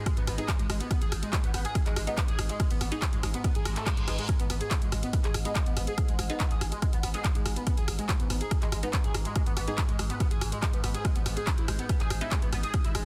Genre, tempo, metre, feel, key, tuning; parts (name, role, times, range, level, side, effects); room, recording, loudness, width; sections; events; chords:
driving peak-time techno; 142 BPM; 4/4; straight; G# minor; A4 = 440 Hz
overtone-sweeping drone; drone; 0.0-13.1 s; G#2; -42 LUFS; equal; chorus, built-in reverb, phaser, sidechain pumping
overdriven synth lead; riff; 0.1-13.0 s; G#3 to G#4; -39 LUFS; equal; tube saturation, ensemble chorus, sidechain pumping, delay
electronic kick drum; drums; 0.1-12.8 s; -31 LUFS; equal
techno drum kit; drums; 0.1-13.0 s; handclaps, hi-hat, ride cymbal, rim click; -37 LUFS; equal; sidechain pumping on hats, sidechain pumping on cymbals
growling 808-style bass; bass; 0.2-13.1 s; G#1; -36 LUFS; equal; tube saturation, sidechain pumping, low-pass filter
filtered dub chord stab; stabs; 0.4-12.3 s; G#3 to D#4; -40 LUFS; equal; phaser, subtle chorus, sidechain pumping, digital delay
reverse cymbal; sound effects; 3.6-4.3 s; -42 LUFS; equal
light reverb; dense, heavily limited modern master; -29 LUFS; mono
0.0-13.1 A section
reverse cymbal 3.6-4.3
0.0 G#m